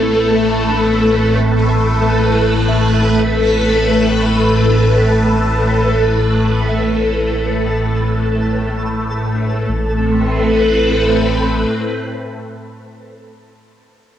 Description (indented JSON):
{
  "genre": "ambient, sequencer-driven space music",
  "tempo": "90 BPM",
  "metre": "4/4",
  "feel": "straight",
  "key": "A minor",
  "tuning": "A4 = 440 Hz",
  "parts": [
    { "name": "phased string machine", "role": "sustained chords", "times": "0.0-13.1 s", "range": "A2 to B4", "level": "-14 LUFS", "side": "equal", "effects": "ensemble chorus, phaser, cassette tape" },
    { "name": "vibraphone with hard mallets", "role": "arpeggios", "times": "0.0-10.0 s", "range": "A3 to A4", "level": "-32 LUFS", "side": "right 1 dB", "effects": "none" },
    { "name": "hollow square pluck", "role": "riff", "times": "0.0-10.0 s", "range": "A3 to E5", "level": "-31 LUFS", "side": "left 1 dB", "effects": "none" },
    { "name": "warm sub bass", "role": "bass", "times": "0.0-11.6 s", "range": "A1", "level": "-22 LUFS", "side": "equal", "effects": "none" },
    { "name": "twinkling granular texture", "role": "texture", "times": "0.0-9.7 s", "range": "A3 to A4", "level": "-24 LUFS", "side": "equal", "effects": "built-in reverb, cassette tape, shimmer reverb" }
  ],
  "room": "wet spring reverb, RT60 1.3 s",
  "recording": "home recording on cassette",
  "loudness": "-12 LUFS",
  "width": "side -10 dB against mid",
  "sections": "0.0-9.7 A section; 9.7-12.4 B section",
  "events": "none",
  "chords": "0.0 Amadd9"
}